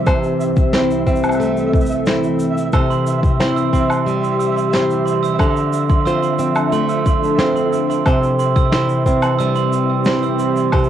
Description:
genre	folktronica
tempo	90 BPM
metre	4/4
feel	straight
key	C major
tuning	A4 = 438 Hz
part	warbly tape-like pad	sustained chords	0.0-10.9 s	C2 to A4	-21 LUFS	left 1 dB	chorus, built-in reverb, cassette tape
part	flamenco guitar	arpeggios	0.0-10.9 s	C3 to C5	-18 LUFS	equal	cassette tape, tape echo
part	flickering grainy texture	texture	0.0-10.9 s	E5	-27 LUFS	right 3 dB	built-in reverb, cassette tape
part	electronic kick drum	drums	0.1-10.9 s	none	-17 LUFS	equal	cassette tape
part	shaker, woodblock and snare drum	drums	0.1-10.9 s	none	-23 LUFS	equal	cassette tape
part	glockenspiel with soft plastic mallets	second line	2.7-10.6 s	C6 to E6	-22 LUFS	right 10 dB	cassette tape, tape echo
room	moderate small room reverb, RT60 0.5 s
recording	home recording on cassette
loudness	-14 LUFS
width	side -10 dB against mid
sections	0.0-10.9 A section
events	none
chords	0.1 Am/C; 5.4 Dm7; 8.1 C

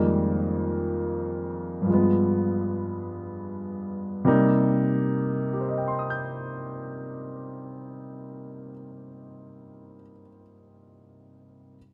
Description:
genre	solo jazz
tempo	47-61 BPM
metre	4/4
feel	swing 69% on 8ths, rubato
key	C minor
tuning	A4 = 440 Hz
part	warm grand piano	solo	0.0-11.8 s	F2 to G6	-27 LUFS	equal	none
room	moderate studio reverb, RT60 0.7 s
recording	none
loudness	-26 LUFS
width	mono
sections	0.0-4.3 A section; 4.3-9.3 B section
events	slowing down 0.0-4.3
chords	0.0 Fm11; 1.9 G7b9; 4.3 Cm7

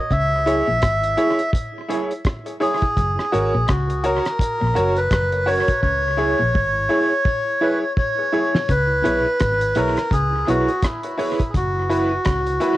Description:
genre	roots reggae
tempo	84 BPM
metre	4/4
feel	swing 59% on 16ths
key	C# dorian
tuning	A4 = 440 Hz
part	melodica	melody	0.0-12.8 s	E4 to E5	-21 LUFS	equal	tape echo
part	clean electric guitar	riff	0.1-12.5 s	F#2 to C#3	-28 LUFS	left 2 dB	spring reverb, cassette tape
part	vintage muted fingered electric bass	bass	0.1-12.6 s	F#1 to C#2	-24 LUFS	equal	none
part	cloth-damped thuddy drum kit	drums	0.1-12.8 s	hi-hat, kick drum, rim click, snare drum	-23 LUFS	equal	cassette tape, analog delay
part	mellow electric guitar	accompaniment	0.5-12.8 s	E4 to C#5	-26 LUFS	right 4 dB	tremolo, cassette tape, tape echo
part	bright upright piano	stabs	0.5-12.8 s	E4 to C#5	-24 LUFS	left 2 dB	cassette tape
room	light reverb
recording	home recording on cassette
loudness	-17 LUFS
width	side -15 dB against mid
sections	0.0-8.7 A section; 8.7-12.8 B section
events	drum fill 5.8-8.7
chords	0.1 C#m; 3.0 F#; 5.8 C#m; 8.7 C#m7; 11.5 F#7sus4

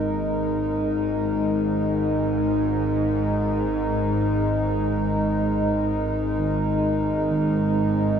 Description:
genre	dark ambient drone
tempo	free time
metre	none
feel	none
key	unclear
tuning	A4 = 438 Hz
part	dark analog pad	sustained chords	0.0-8.2 s	G#3 to A#4	-23 LUFS	equal	lush chorus, shimmer reverb
part	gamelan-type bossed gongs	arpeggios	0.0-0.8, 6.4-8.2 s	D#3	-29 LUFS	right 4 dB	none
part	bowed-like drone	drone	0.0-8.2 s	G#1 to G#2	-25 LUFS	equal	built-in reverb
room	moderate huge ambient reverb, RT60 8.6 s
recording	none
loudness	-21 LUFS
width	side -8 dB against mid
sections	0.0-8.2 A section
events	none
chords	0.0 G#5

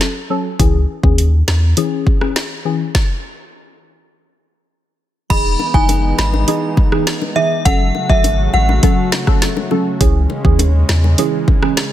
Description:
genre	dancehall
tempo	102 BPM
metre	4/4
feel	straight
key	C# minor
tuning	A4 = 436 Hz
part	deep mellow chord stab	accompaniment	0.0-11.8 s	E3 to A4	-19 LUFS	equal	chorus
part	afro-pop drum kit	drums	0.0-11.9 s	crash cymbal, hi-hat, kick drum, rim click, snare drum	-16 LUFS	equal	overdrive
part	punchy sub bass	bass	0.6-1.7, 5.3-11.1 s	E1 to E2	-14 LUFS	equal	none
part	synth chime	melody	5.3-8.7 s	E5 to B5	-19 LUFS	equal	ensemble chorus, tape echo
part	warm analog pad	sustained chords	5.3-11.9 s	C#3 to F#4	-24 LUFS	left 1 dB	chorus, sidechain pumping
part	bongos	percussion	5.6-11.6 s	none	-26 LUFS	left 6 dB	none
room	little or no reverb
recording	dense, heavily limited modern master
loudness	-12 LUFS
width	side -12 dB against mid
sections	0.0-5.3 A section; 5.3-11.9 B section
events	stop 2.9-5.3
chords	0.0 F#m; 0.6 C#m; 2.9 N.C.; 5.3 Emaj7; 7.7 F#m; 10.0 C#m

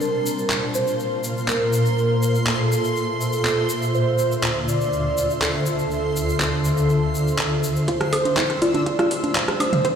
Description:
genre	progressive house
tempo	122 BPM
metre	4/4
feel	straight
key	F major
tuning	A4 = 437 Hz
part	warm velvety synth lead	melody	0.0-10.0 s	A4 to D5	-24 LUFS	right 2 dB	chorus, tape echo
part	shimmering ambient pad	sustained chords	0.0-10.0 s	D2 to F5	-23 LUFS	equal	chorus, built-in reverb, sidechain pumping
part	egg shaker	percussion	0.0-7.9 s	none	-34 LUFS	left 4 dB	none
part	backwards swelling texture	texture	0.0-10.0 s	C6 to E6	-32 LUFS	equal	built-in reverb, sidechain pumping
part	pop drum kit	drums	0.5-9.9 s	handclaps, hi-hat, woodblock	-27 LUFS	equal	studio ambience
part	analog pluck	arpeggios	7.9-9.9 s	E4 to F5	-24 LUFS	equal	chorus, sidechain pumping, ping-pong delay
part	tight sequencer bass	bass	7.9-10.0 s	F1 to F2	-35 LUFS	equal	none
part	electronic kick drum	drums	7.9-9.9 s	none	-33 LUFS	equal	overdrive, high-pass filter on kick, studio ambience, high-pass filter on room
part	punchy analog drum machine	percussion	8.0-9.8 s	congas, rim click, toms	-25 LUFS	right 1 dB	sidechain pumping on snare, studio ambience, sidechain pumping on perc, sidechain pumping on toms
room	light reverb, digital ambience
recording	played on a big sound system in a bare room, stone room reverb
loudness	-19 LUFS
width	side -8 dB against mid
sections	0.0-7.9 A section; 7.9-10.0 B section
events	build-up 7.9-10.0; filter sweep on synth pluck 7.9-10.0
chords	0.0 Bbsus2; 3.9 Dm7; 7.9 Fadd9

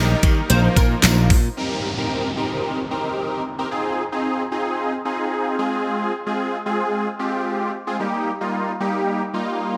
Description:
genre	dance-pop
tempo	112 BPM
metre	4/4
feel	straight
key	C minor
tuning	A4 = 442 Hz
part	plucky unison lead	melody	0.0-0.9 s	Bb4 to Eb5	-30 LUFS	equal	ensemble chorus, sidechain pumping, delay
part	big bright polysynth	accompaniment	0.0-9.8 s	F3 to Bb4	-24 LUFS	equal	analog chorus, sidechain pumping
part	soft supersaw	sustained chords	0.0-1.6 s	Eb3 to Bb4	-32 LUFS	equal	none
part	glassy slap bass	bass	0.0-1.5 s	Bb1 to Eb3	-20 LUFS	equal	sidechain pumping
part	pop drum kit	drums	0.2-1.4 s	handclaps, hi-hat, kick drum, snare drum	-20 LUFS	equal	gated reverb
part	tambourine	percussion	0.2-1.4 s	none	-36 LUFS	equal	none
part	downlifter	sound effects	1.6-5.9 s	none	-33 LUFS	equal	none
room	moderate plate reverb, RT60 2.3 s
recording	bright 1980s-style digital production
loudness	-22 LUFS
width	mono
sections	0.0-1.6 A section; 1.6-9.8 B section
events	drop 0.0-1.6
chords	0.5 Bbsus4; 1.6 Cm7; 3.7 Ab6; 5.6 Fm; 8.0 Eb

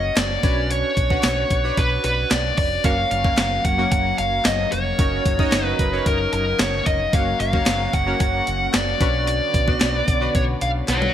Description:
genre	1980s-style pop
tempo	112 BPM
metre	4/4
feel	straight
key	F# major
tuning	A4 = 440 Hz
part	dark smooth lead guitar	melody	0.0-11.1 s	A#4 to F#5	-22 LUFS	left 1 dB	overdrive, ping-pong delay
part	chorused retro synth keys	accompaniment	0.0-11.1 s	A#3 to F#5	-26 LUFS	right 1 dB	tremolo
part	fingered electric bass	bass	0.0-11.1 s	E#1 to B1	-26 LUFS	equal	none
part	gated 80s digital drum machine	drums	0.2-11.1 s	hi-hat, kick drum, snare drum, tambourine, toms	-21 LUFS	equal	gated reverb, gated reverb snare
part	group handclap	percussion	0.2-11.0 s	none	-39 LUFS	left 4 dB	none
part	phased analog pad	sustained chords	2.8-11.1 s	C#3 to F#4	-32 LUFS	left 2 dB	phaser, chorus
room	light reverb, digital ambience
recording	bright 1980s-style digital production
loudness	-18 LUFS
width	side -10 dB against mid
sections	0.0-11.1 A section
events	drum fill 10.9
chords	0.4 Bmadd9; 2.8 F#; 5.0 D#m7/F#; 7.1 F#; 9.0 Bmadd9

